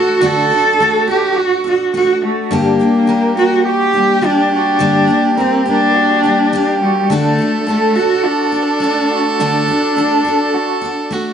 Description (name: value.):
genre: acoustic folk duo or small band.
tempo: 105 BPM.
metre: 4/4.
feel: straight.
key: G harmonic minor.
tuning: A4 = 440 Hz.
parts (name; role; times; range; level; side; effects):
dark cello; melody; 0.0-11.1 s; G3 to A4; -14 LUFS; right 1 dB; none.
warm fiddle; second line; 0.0-11.3 s; F#4 to A4; -19 LUFS; right 3 dB; none.
picked steel-string acoustic guitar; accompaniment; 0.0-11.3 s; G2 to A4; -19 LUFS; left 4 dB; none.
electric guitar through a small old amp; arpeggios; 0.0-10.8 s; D4 to Bb4; -20 LUFS; right 1 dB; tremolo.
room: moderate studio reverb, RT60 0.9 s.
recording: nothing above 10.5 kHz.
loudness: -12 LUFS.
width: side -8 dB against mid.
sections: 0.0-11.3 A section.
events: none.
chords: 0.0 D; 2.5 Gm; 7.1 D.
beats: | 0.23 0.80 1.37 1.94 | 2.52 3.09 3.66 4.23 | 4.81 5.38 5.95 6.53 | 7.10 7.67 8.25 8.82 | 9.40 9.97 10.54 11.12.